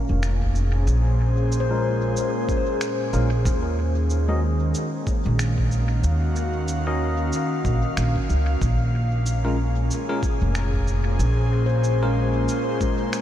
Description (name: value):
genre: ambient dub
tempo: 93 BPM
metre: 4/4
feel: swing 58% on 16ths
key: Bb minor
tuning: A4 = 440 Hz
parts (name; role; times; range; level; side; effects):
- airy breathy pad; sustained chords; 0.0-13.2 s; Bb2 to F5; -27 LUFS; equal; chorus
- upright bass; bass; 0.1-12.5 s; F1 to Eb2; -21 LUFS; equal; none
- electronic finger snaps and cabasa; drums; 0.2-13.2 s; none; -36 LUFS; right 1 dB; overdrive, studio ambience, dub echo
- electronic kick drum; drums; 0.4-13.0 s; none; -26 LUFS; equal; overdrive, studio ambience
- handpan; arpeggios; 1.6-6.3, 11.7-13.2 s; Ab3 to C5; -32 LUFS; left 6 dB; analog delay
- bell-like tine electric piano; stabs; 1.7-13.2 s; Ab3 to Eb5; -30 LUFS; left 2 dB; lush chorus, low-pass filter, dub echo
room: light reverb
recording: none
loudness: -20 LUFS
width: side -11 dB against mid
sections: 0.0-13.2 A section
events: filter sweep on tine electric piano 0.0-13.2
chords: 0.0 Bbm7; 3.5 Ebm7; 8.6 Bbm7